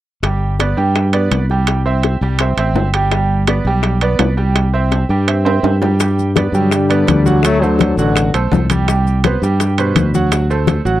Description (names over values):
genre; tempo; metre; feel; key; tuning
latin, salsa; 167 BPM; 4/4; straight; G major; A4 = 439 Hz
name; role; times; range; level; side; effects
bright concert grand piano; accompaniment; 0.2-11.0 s; B2 to G5; -19 LUFS; right 4 dB; none
modern bright fingered electric bass; bass; 0.2-11.0 s; G1 to G2; -15 LUFS; equal; none
bongos; percussion; 0.2-11.0 s; none; -23 LUFS; left 9 dB; none
timbales; percussion; 0.2-10.9 s; none; -20 LUFS; right 6 dB; none
congas; percussion; 6.0-10.9 s; none; -19 LUFS; left 5 dB; none
maracas; percussion; 6.0-11.0 s; none; -31 LUFS; left 17 dB; none
brilliant trombone section; melody; 6.5-8.3 s; B2 to A3; -15 LUFS; left 3 dB; none
room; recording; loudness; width
little or no reverb; dry, close 1970s-style studio recording; -12 LUFS; side -14 dB against mid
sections
0.2-6.0 A section; 6.0-11.0 B section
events
drum fill 4.9-6.0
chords
0.2 G; 1.7 C; 3.1 G; 4.6 C; 6.0 Gmaj7; 7.4 D7; 8.9 C5; 10.3 D7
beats
| 0.23 0.60 0.96 1.32 | 1.68 2.04 2.40 2.76 | 3.12 3.48 3.84 4.20 | 4.56 4.92 5.28 5.64 | 6.00 6.36 6.72 7.08 | 7.44 7.80 8.16 8.52 | 8.88 9.24 9.60 9.96 | 10.32 10.68